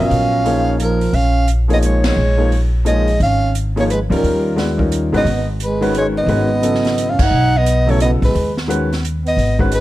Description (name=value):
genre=modal jazz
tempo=175 BPM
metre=3/4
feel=swing 64% on 8ths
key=G# phrygian from 5.3 s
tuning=A4 = 440 Hz
part: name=breathy soprano saxophone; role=melody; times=0.0-9.8 s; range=Bb4 to F#5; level=-19 LUFS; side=right 1 dB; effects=none
part: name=mellow trombone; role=second line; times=0.0-9.8 s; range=F3 to D#4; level=-23 LUFS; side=right 3 dB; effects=none
part: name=warm concert grand piano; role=accompaniment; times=0.0-9.7 s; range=C#3 to Eb5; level=-20 LUFS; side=left 1 dB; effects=none
part: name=upright bass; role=bass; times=0.0-9.8 s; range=G1 to Eb2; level=-17 LUFS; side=equal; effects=none
part: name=open jazz drum kit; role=drums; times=0.1-9.8 s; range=crash cymbal, hi-hat, kick drum, ride cymbal, snare drum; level=-24 LUFS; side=equal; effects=none
room=little or no reverb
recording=none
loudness=-14 LUFS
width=side -16 dB against mid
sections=0.0-5.3 A section; 5.3-9.8 B section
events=band accent 2.0, 7.1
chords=0.0 Bbm7; 1.1 Dbadd9/Bb; 4.2 Eb7; 5.3 G#m7